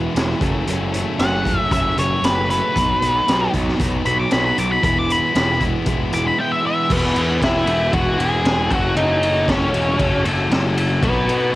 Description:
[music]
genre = quiet-loud alternative rock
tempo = 116 BPM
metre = 4/4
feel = straight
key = E major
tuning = A4 = 439 Hz
[part]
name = overdriven semi-hollow guitar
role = riff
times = 0.0-6.9 s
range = F#2 to E4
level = -25 LUFS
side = right 5 dB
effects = cassette tape
[part]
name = tight distorted guitar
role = riff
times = 0.0-11.6 s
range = F#2 to A4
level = -25 LUFS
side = left 6 dB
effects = distortion, cassette tape
[part]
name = fuzz picked electric bass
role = bass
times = 0.0-11.5 s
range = E1 to B2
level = -22 LUFS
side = equal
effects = overdrive
[part]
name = raw garage drum kit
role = drums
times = 0.2-11.4 s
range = crash cymbal, hi-hat, kick drum, ride cymbal, snare drum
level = -22 LUFS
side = equal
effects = cassette tape
[part]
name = octave-fuzz lead guitar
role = melody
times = 1.2-11.5 s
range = B3 to D6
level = -20 LUFS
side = equal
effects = distortion, cassette tape, tape echo
[sound]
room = light reverb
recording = home recording on cassette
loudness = -16 LUFS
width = side -17 dB against mid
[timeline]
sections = 0.0-6.9 A section; 6.9-11.6 B section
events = lead electric guitar solo 0.0-6.9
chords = 0.4 F#m; 2.8 B; 4.8 E; 8.7 F#m; 11.0 B

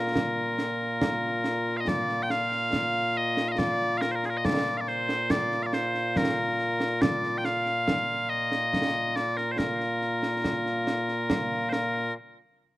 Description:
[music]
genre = scottish traditional, Scottish pipe music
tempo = 70 BPM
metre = 3/4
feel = straight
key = Bb major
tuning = A4 = 440 Hz
[part]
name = loud bright bagpipes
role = melody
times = 0.0-12.1 s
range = Bb2 to G5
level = -26 LUFS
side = equal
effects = none
[part]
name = concert snare drum and concert bass drum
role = drums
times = 0.2-12.1 s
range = none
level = -30 LUFS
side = right 1 dB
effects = none
[sound]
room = little or no reverb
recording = recorded outdoors, with no room sound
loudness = -25 LUFS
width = side -16 dB against mid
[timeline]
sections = 0.0-1.9 A section; 1.9-12.2 B section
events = none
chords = none

